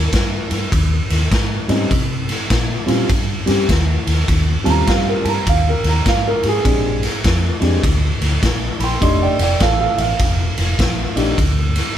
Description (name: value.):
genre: electric blues shuffle.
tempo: 101 BPM.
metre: 4/4.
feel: swing 63% on 8ths.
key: unclear.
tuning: A4 = 440 Hz.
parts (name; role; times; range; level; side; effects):
dark upright piano; accompaniment; 0.0-11.4 s; G3 to C6; -19 LUFS; right 2 dB; none.
vintage muted fingered electric bass; bass; 0.0-11.8 s; F1 to C3; -19 LUFS; equal; none.
raw garage drum kit; drums; 0.1-11.9 s; kick drum, ride cymbal, snare drum; -18 LUFS; equal; none.
room: light reverb.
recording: band playing live in one room.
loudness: -14 LUFS.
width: side -10 dB against mid.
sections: 0.0-12.0 A section.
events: none.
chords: 0.0 Eb13; 6.7 Bb13; 9.0 F13.